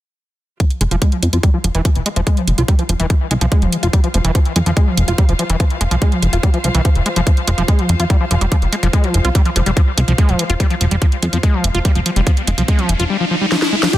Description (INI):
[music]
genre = psychedelic trance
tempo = 144 BPM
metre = 4/4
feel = straight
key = F harmonic minor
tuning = A4 = 440 Hz
[part]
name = overdriven acid bass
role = riff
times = 0.6-14.0 s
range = E3 to F4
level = -20 LUFS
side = left 1 dB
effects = distortion, auto-pan, sidechain pumping, ping-pong delay
[part]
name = electronic kick drum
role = drums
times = 0.6-14.0 s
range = none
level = -14 LUFS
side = equal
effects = overdrive
[part]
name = garage drum kit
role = drums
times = 0.6-14.0 s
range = crash cymbal, hi-hat, snare drum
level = -21 LUFS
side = right 1 dB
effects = overdrive
[part]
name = warm studio string section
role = texture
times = 0.6-13.1 s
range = F4 to F5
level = -28 LUFS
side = left 1 dB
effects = sidechain pumping
[part]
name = plucky analog bass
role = bass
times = 0.8-13.1 s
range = F1 to F2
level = -16 LUFS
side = equal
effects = none
[part]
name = riser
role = sound effects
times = 12.0-13.9 s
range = none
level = -22 LUFS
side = left 2 dB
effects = none
[part]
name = wide unison lead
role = melody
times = 13.9-14.0 s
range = G4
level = -17 LUFS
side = left 4 dB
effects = phaser, sidechain pumping
[sound]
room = little or no reverb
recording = dense, heavily limited modern master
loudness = -13 LUFS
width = side -14 dB against mid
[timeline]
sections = 0.6-13.9 A section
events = fade-in on string section 0.6-13.9; filter sweep on acid bass 0.6-13.9; riser 12.0-13.9; drum fill 13.5-13.9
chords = 0.6 F5